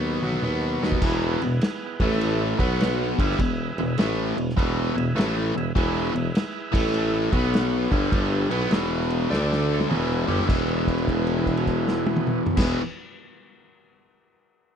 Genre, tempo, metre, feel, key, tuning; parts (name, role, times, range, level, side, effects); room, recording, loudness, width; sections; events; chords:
blues rock power trio and southern rock; 101 BPM; 4/4; swing 65% on 8ths; E mixolydian; A4 = 440 Hz
biting overdriven guitar; riff; 0.0-12.8 s; E2 to D4; -24 LUFS; left 1 dB
warm tuba; bass; 0.0-12.8 s; E1 to D#2; -26 LUFS; equal
overdriven tonewheel organ; sustained chords; 0.2-12.8 s; A3 to F#5; -34 LUFS; right 6 dB; slow rotary speaker
vintage drum kit; drums; 0.2-12.7 s; crash cymbal, kick drum, snare drum, toms; -27 LUFS; equal
small room reverb; dry, close 1970s-style studio recording; -21 LUFS; side -8 dB against mid
0.0-1.0 A section; 1.0-10.5 B section; 10.5-12.9 C section
drum fill 0.0-1.0, 9.3-10.5; held note 10.5-12.5
0.0 B; 1.0 E; 1.9 A5; 2.5 B5; 3.1 E; 6.6 A5; 7.2 B5; 7.8 E; 9.3 D5; 9.9 E